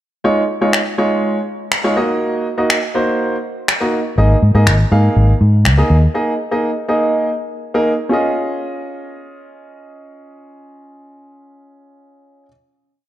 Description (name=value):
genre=dance-pop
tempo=122 BPM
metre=4/4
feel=straight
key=Db major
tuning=A4 = 442 Hz
part: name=clear baby grand piano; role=accompaniment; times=0.2-12.5 s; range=Ab3 to F5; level=-17 LUFS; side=right 1 dB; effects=none
part: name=electronic finger snaps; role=drums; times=0.7-5.8 s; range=none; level=-19 LUFS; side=left 1 dB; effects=overdrive
part: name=vintage muted fingered electric bass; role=bass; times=4.2-6.1 s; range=Ab1 to Ab2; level=-10 LUFS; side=equal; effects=none
room=light reverb, digital ambience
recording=dark, warm production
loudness=-13 LUFS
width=side -13 dB against mid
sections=0.2-8.1 verse; 8.1-12.0 final chord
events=none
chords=0.2 Dbadd9; 2.0 Ebm; 4.2 Absus2; 8.1 Dbadd9